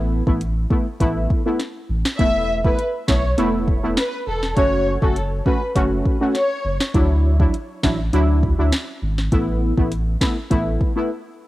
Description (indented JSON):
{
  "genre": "dancehall",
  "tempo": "101 BPM",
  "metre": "4/4",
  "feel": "straight",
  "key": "unclear",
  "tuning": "A4 = 440 Hz",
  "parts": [
    { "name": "synth brass stab", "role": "accompaniment", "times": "0.0-11.1 s", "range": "F#3 to F#4", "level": "-22 LUFS", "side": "equal", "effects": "chorus, sidechain pumping" },
    { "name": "saturated sub bass", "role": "bass", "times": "0.0-10.8 s", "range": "E1 to D2", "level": "-21 LUFS", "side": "equal", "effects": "none" },
    { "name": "afro-pop drum kit", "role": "drums", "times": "0.3-11.0 s", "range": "hi-hat, kick drum, snare drum", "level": "-21 LUFS", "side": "equal", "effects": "cassette tape" },
    { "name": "warm studio violin section", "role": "melody", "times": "2.2-6.8 s", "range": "A4 to E5", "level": "-23 LUFS", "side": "left 1 dB", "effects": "cassette tape, analog delay" }
  ],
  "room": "digital ambience",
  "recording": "home recording on cassette",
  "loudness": "-17 LUFS",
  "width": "side -16 dB against mid",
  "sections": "0.0-11.5 A section",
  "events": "break 11.1-11.5",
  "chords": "0.0 Asus2; 2.2 Esus4; 4.6 F#m; 6.9 Dadd9; 9.3 Asus2"
}